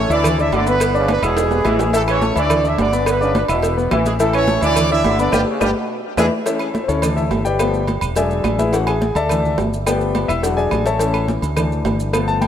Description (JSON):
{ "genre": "latin, salsa", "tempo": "212 BPM", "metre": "4/4", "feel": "straight", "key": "A major", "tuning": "A4 = 442 Hz", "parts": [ { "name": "clear horn section", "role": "melody", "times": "0.0-6.3 s", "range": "G3 to E5", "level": "-20 LUFS", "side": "right 3 dB", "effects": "ping-pong delay" }, { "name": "clear grand piano", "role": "accompaniment", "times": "0.0-12.5 s", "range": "E3 to E6", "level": "-20 LUFS", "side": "left 4 dB", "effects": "none" }, { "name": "mellow fretless electric bass", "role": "bass", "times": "0.0-12.5 s", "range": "E1 to E2", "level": "-22 LUFS", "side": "equal", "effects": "none" }, { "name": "clear trombone section", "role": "second line", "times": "0.1-6.3 s", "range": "B2 to E3", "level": "-25 LUFS", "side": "equal", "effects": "none" }, { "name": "agogo bells and timbales", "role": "percussion", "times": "0.1-12.5 s", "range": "none", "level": "-26 LUFS", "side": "right 7 dB", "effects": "none" }, { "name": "maracas", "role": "percussion", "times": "0.1-12.5 s", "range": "none", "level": "-34 LUFS", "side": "right 5 dB", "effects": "none" }, { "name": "claves", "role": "percussion", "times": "0.2-12.3 s", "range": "none", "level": "-34 LUFS", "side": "left 4 dB", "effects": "none" }, { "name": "congas", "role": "percussion", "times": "0.2-12.5 s", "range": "none", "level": "-25 LUFS", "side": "equal", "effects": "none" }, { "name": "cowbell", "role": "percussion", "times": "0.2-12.5 s", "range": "none", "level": "-26 LUFS", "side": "equal", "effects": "none" } ], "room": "moderate plate reverb, RT60 3.8 s", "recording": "dreamy mix soaked in reverb", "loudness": "-15 LUFS", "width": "side -9 dB against mid", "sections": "0.0-6.5 A section; 6.5-12.5 B section", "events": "drum fill 1.1-1.9, 5.6-6.5; band accent 5.3-6.5; grand piano solo 6.5-12.5", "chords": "0.2 Dsus2; 0.8 G; 1.4 E; 1.9 A; 2.5 Dsus2; 3.1 G; 3.6 E; 4.2 A; 4.8 Dsus2; 5.3 G; 5.9 E7; 6.5 A; 7.0 Dsus2; 7.6 G7; 8.2 E7; 8.7 A; 9.3 Dsus2; 9.9 G7; 10.4 E7; 11.0 A; 11.6 Dsus2", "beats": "0.24 0.53 | 0.81 1.09 1.37 1.66 | 1.94 2.22 2.50 2.79 | 3.07 3.35 3.63 3.92 | 4.20 4.48 4.76 5.05 | 5.33 5.61 5.90 6.18 | 6.46 6.75 7.03 7.32 | 7.60 7.88 8.17 8.45 | 8.73 9.02 9.30 9.59 | 9.87 10.15 10.44 10.72 | 11.00 11.29 11.57 11.85 | 12.14 12.42" }